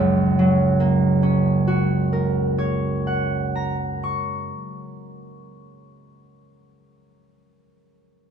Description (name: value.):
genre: classical, solo harp piece.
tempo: 36-39 BPM.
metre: 4/4.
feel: rubato.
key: F# major.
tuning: A4 = 441 Hz.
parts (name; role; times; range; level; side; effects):
concert harp; solo; 0.0-6.7 s; F#1 to C#6; -19 LUFS; right 1 dB; none.
room: light reverb.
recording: dark, warm production, nothing above 11.0 kHz.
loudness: -18 LUFS.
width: side -8 dB against mid.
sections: 0.0-5.3 A section.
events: none.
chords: 0.0 F#.